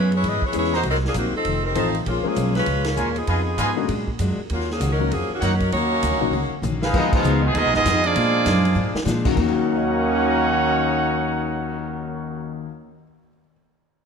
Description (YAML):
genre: jazz, big band swing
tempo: 197 BPM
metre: 4/4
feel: swing 61% on 8ths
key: Eb minor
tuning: A4 = 441 Hz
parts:
  - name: bright saxophone section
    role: melody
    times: 0.0-6.6 s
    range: Eb3 to Eb5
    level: -24 LUFS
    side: left 1 dB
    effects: none
  - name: picked steel-string acoustic guitar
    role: accompaniment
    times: 0.0-13.0 s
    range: F2 to G#4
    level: -30 LUFS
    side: left 5 dB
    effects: none
  - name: upright bass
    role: bass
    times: 0.0-12.6 s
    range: F1 to Bb2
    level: -24 LUFS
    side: right 1 dB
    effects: none
  - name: vintage drum kit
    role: drums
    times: 0.1-11.7 s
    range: crash cymbal, cymbal swell, hi-hat, kick drum, ride cymbal, snare drum, toms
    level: -29 LUFS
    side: right 1 dB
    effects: none
  - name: warm grand piano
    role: accompaniment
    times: 0.5-13.5 s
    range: Eb2 to Bb6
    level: -27 LUFS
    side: left 10 dB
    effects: none
  - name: warm trumpet section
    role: stabs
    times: 0.7-7.2 s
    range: Eb4 to Bb5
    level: -28 LUFS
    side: right 1 dB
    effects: none
  - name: clear trombone section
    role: second line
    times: 5.7-12.6 s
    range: Ab2 to Gb4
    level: -25 LUFS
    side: right 3 dB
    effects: none
  - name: clear trumpet section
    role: melody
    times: 7.0-12.6 s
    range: Ab3 to Gb5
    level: -23 LUFS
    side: right 2 dB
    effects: none
room: light reverb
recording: close, detailed microphones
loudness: -19 LUFS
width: side -6 dB against mid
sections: 0.0-6.9 A section; 6.9-9.4 B section; 9.4-11.8 C section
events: band accent 2.8, 7.1; drum fill 6.3-6.9, 8.8-9.1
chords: 0.0 E6; 0.8 Cm7b5; 1.4 F7; 2.1 Bbm7; 3.3 Fm7b5; 3.9 Bbaug7; 4.5 Ebm7; 6.9 Fm7b5; 8.1 Bb7; 9.4 Ebm7